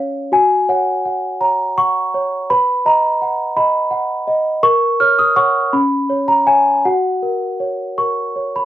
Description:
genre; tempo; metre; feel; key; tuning
classical, lullaby for celesta; 55 BPM (dotted quarters); 6/8; uneven beats; F# major; A4 = 441 Hz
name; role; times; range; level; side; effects
celesta; solo; 0.0-8.7 s; C#4 to E#6; -14 LUFS; equal; none
room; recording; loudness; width
light reverb; dry, close 1970s-style studio recording; -14 LUFS; side -13 dB against mid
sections
0.0-8.7 A section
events
none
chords
0.3 F#5; 2.5 B; 4.6 F#/A#; 5.7 C#7; 6.8 F#

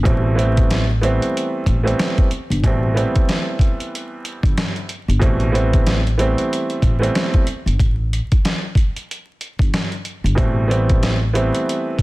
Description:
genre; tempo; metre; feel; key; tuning
hip hop, boom-bap hip-hop; 93 BPM; 4/4; swing 57% on 16ths; A minor; A4 = 440 Hz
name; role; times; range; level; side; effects
warm upright piano; accompaniment; 0.0-12.0 s; B2 to C4; -21 LUFS; right 2 dB; cassette tape, high-pass filter, low-pass filter
upright bass; bass; 0.0-12.0 s; G1 to A1; -19 LUFS; equal; none
boom bap sampler-style drum kit; drums; 0.1-12.0 s; hi-hat, kick drum, snare drum; -18 LUFS; equal; none
room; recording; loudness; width
studio ambience; dense, heavily limited modern master, vinyl crackle; -16 LUFS; side -20 dB against mid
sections
0.0-12.0 A section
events
break 7.8-10.4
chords
0.0 Am9

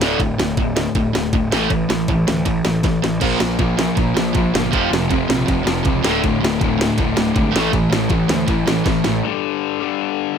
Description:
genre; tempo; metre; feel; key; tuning
punk rock; 159 BPM; 4/4; straight; D minor; A4 = 440 Hz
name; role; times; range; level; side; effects
distorted electric guitar; riff; 0.0-10.4 s; D2 to Bb3; -22 LUFS; left 12 dB; distortion
distorted electric guitar; riff; 0.0-9.2 s; D2 to Bb3; -22 LUFS; right 9 dB; distortion
fuzz picked electric bass; bass; 0.0-9.2 s; D1 to D2; -24 LUFS; equal; overdrive
drum and bass drum kit; drums; 0.0-9.1 s; crash cymbal, kick drum, ride cymbal, snare drum; -21 LUFS; equal; none
crunchy overdriven guitar; riff; 3.2-9.2 s; D2 to Bb3; -22 LUFS; equal; none
room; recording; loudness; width
little or no reverb; none; -16 LUFS; side -7 dB against mid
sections
0.0-9.2 A section; 9.2-10.4 B section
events
drum fill 2.8-3.2, 8.9-9.2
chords
0.0 D5; 1.5 A5; 3.2 Bb5; 4.7 F5; 6.0 D5; 7.6 A5; 9.2 G5

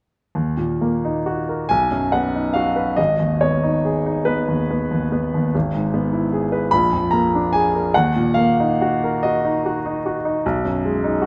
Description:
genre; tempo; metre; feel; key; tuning
classical, romantic nocturne for solo piano; 43-53 BPM (dotted quarters); 12/8; rubato; Eb minor; A4 = 440 Hz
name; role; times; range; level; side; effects
clear grand piano; solo; 0.3-11.3 s; Ab1 to Cb6; -20 LUFS; equal; none
room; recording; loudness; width
moderate scoring stage reverb, RT60 1.7 s; none; -20 LUFS; mono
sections
0.3-11.3 A section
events
none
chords
0.3 Ebm; 1.7 B; 3.0 Abm; 5.5 E/G#; 6.7 Bb7; 7.9 Ebm; 10.4 G#m7/B

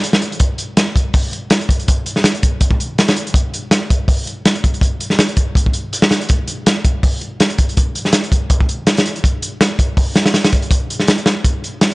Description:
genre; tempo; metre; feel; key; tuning
drum and bass; 163 BPM; 4/4; swing 54% on 16ths; none; none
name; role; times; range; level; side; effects
crunchy breakbeat drum kit; drums; 0.0-11.9 s; hi-hat, kick drum, snare drum; -13 LUFS; equal; none
room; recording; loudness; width
light reverb; dry, gritty hardware recording, nothing above 10.3 kHz; -13 LUFS; side -23 dB against mid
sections
0.0-11.9 A section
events
none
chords
none

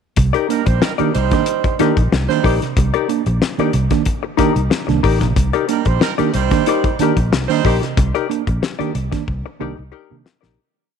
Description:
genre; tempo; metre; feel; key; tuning
funk; 92 BPM; 4/4; straight; C minor; A4 = 439 Hz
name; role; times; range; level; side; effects
hollow-body jazz guitar; accompaniment; 0.2-10.6 s; Eb4 to D5; -21 LUFS; left 12 dB; none
mellow tine electric piano; stabs; 0.2-10.5 s; C3 to D4; -21 LUFS; right 11 dB; slow stereo tremolo
vintage muted fingered electric bass; bass; 0.2-10.6 s; A1 to C3; -19 LUFS; equal; none
warm soul drum kit; drums; 0.2-10.6 s; hi-hat, kick drum, snare drum; -20 LUFS; left 2 dB; none
warm horn section; second line; 0.5-7.7 s; G3 to C5; -22 LUFS; right 11 dB; none
room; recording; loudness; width
light reverb, studio ambience; 1960s-style stereo with parts hard left and right; -14 LUFS; side -7 dB against mid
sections
0.2-10.6 A section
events
fade-out 8.0-10.6; drum fill 9.3-10.6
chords
0.2 Cm9

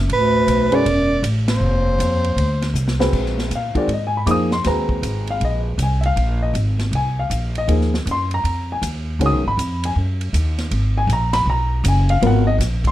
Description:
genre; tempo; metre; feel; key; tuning
modal jazz; 158 BPM; 4/4; swing 64% on 8ths; unclear; A4 = 440 Hz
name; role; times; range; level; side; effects
upright bass; bass; 0.0-12.9 s; E1 to Bb2; -19 LUFS; equal; none
bright soprano saxophone; melody; 0.1-2.7 s; B4 to D5; -20 LUFS; right 2 dB; plate reverb
clear bass clarinet; second line; 0.1-2.7 s; D2 to F#2; -21 LUFS; left 2 dB; none
swinging big-band drum kit; drums; 0.1-12.9 s; crash cymbal, hi-hat, kick drum, ride cymbal, snare drum; -28 LUFS; equal; none
warm upright piano; accompaniment; 0.7-12.9 s; Eb3 to Eb6; -20 LUFS; left 1 dB; none
room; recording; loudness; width
light reverb; dark, warm production; -16 LUFS; side -14 dB against mid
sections
0.0-3.1 A section; 3.1-12.9 B section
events
band accent 1.4; drum fill 2.8-3.1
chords
0.0 E9sus4; 1.6 F5; 3.1 Bb9sus4; 9.2 Db9sus4 (rootless)

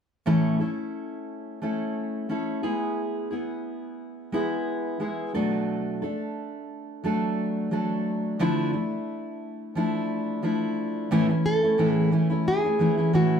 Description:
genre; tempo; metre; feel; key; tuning
acoustic pop; 88 BPM; 4/4; swing 55% on 16ths; A major; A4 = 439 Hz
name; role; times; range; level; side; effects
fingerpicked steel-string acoustic guitar; accompaniment; 0.3-13.4 s; A2 to A4; -25 LUFS; equal; none
nylon-string guitar; melody; 11.5-13.4 s; F#4 to A4; -24 LUFS; equal; plate reverb
room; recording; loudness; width
wet studio reverb, RT60 0.6 s; heard from further back in the room; -24 LUFS; side -7 dB against mid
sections
0.3-11.1 A section; 11.1-13.4 B section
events
none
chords
0.3 A; 2.6 E/G#; 5.3 Bm7; 8.4 Dmadd9; 11.1 A

